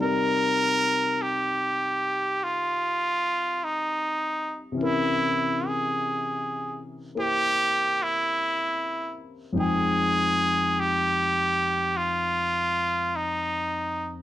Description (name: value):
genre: jazz ballad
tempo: 50 BPM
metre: 4/4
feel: swing 69% on 8ths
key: unclear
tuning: A4 = 439 Hz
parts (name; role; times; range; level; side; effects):
- trumpet with straight mute; melody; 0.0-14.1 s; Eb4 to Bb4; -24 LUFS; right 1 dB; none
- warm concert grand piano; accompaniment; 0.0-14.2 s; F2 to G5; -30 LUFS; left 3 dB; none
room: moderate studio reverb, RT60 0.9 s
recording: dark, warm production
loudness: -23 LUFS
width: side -13 dB against mid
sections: 0.0-14.2 A section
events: none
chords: 0.0 Cm9; 4.8 C7b9; 9.5 Fm9